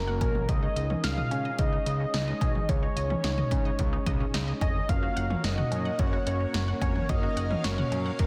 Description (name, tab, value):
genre	synth-pop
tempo	109 BPM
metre	4/4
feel	straight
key	F# major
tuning	A4 = 438 Hz
part	unison lead	melody	0.0-8.3 s	A#4 to E#5	-35 LUFS	equal	digital delay
part	unison pluck	arpeggios	0.0-8.3 s	D#3 to F#5	-43 LUFS	equal	none
part	fat analog bass	bass	0.0-8.3 s	E#1 to C#3	-33 LUFS	equal	none
part	mellow synth brass	accompaniment	0.1-8.3 s	G#3 to C#5	-40 LUFS	equal	chorus
part	punchy analog drum machine	drums	0.2-8.3 s	cowbell, hi-hat, kick drum, snare drum, toms	-31 LUFS	equal	none
part	string machine, full ensemble	sustained chords	4.9-8.3 s	A#3 to E#5	-40 LUFS	equal	phaser, ensemble chorus
room	moderate recital hall reverb, RT60 1.4 s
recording	dense, heavily limited modern master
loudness	-28 LUFS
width	mono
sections	0.0-8.3 A section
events	none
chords	0.5 C#sus2; 4.9 F#